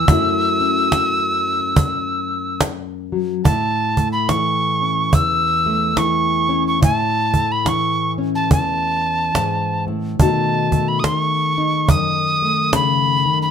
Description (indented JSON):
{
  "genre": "acoustic folk duo or small band",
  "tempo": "71 BPM",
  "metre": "4/4",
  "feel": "swing 62% on 8ths",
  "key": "A major",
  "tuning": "A4 = 439 Hz",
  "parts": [
    { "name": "tin whistle", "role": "melody", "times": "0.0-13.5 s", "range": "A5 to E6", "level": "-18 LUFS", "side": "right 1 dB", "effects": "none" },
    { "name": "nylon-string guitar", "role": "accompaniment", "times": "0.0-13.5 s", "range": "E2 to F#4", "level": "-21 LUFS", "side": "left 3 dB", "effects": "none" },
    { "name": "cajon", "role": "percussion", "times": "0.1-13.3 s", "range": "none", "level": "-16 LUFS", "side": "right 1 dB", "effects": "none" }
  ],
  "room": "moderate studio reverb, RT60 0.7 s",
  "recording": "none",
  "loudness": "-16 LUFS",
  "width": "side -8 dB against mid",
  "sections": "0.0-3.4 A section; 3.4-13.5 B section",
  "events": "none",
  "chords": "0.1 F#m7; 3.4 A; 10.2 B7",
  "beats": "| 0.07 0.92 1.76 2.60 | 3.45 4.29 5.13 5.98 | 6.82 7.67 8.51 9.36 | 10.20 11.05 11.89 12.74"
}